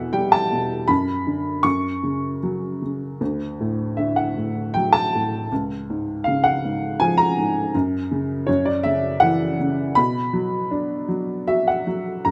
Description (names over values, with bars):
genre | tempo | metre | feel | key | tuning
classical, lyrical solo piano | 80 BPM | 3/4 | rubato | B minor | A4 = 440 Hz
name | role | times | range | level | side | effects
dark upright piano | solo | 0.0-12.3 s | C#2 to C#6 | -22 LUFS | equal | none
room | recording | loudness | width
light reverb | close, detailed microphones | -22 LUFS | mono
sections
0.0-12.3 A section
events
upright piano fill 11.1-12.3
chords
0.0 Em; 0.9 Bm/F#; 1.6 F#5; 3.2 D; 5.5 C#; 7.7 F#5; 10.0 Bm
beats
0.14 | 0.89 1.65 2.43 | 3.21 3.98 4.75 | 5.51 6.27 7.01 | 7.74 8.48 9.22 | 9.96 10.71 11.48 | 12.27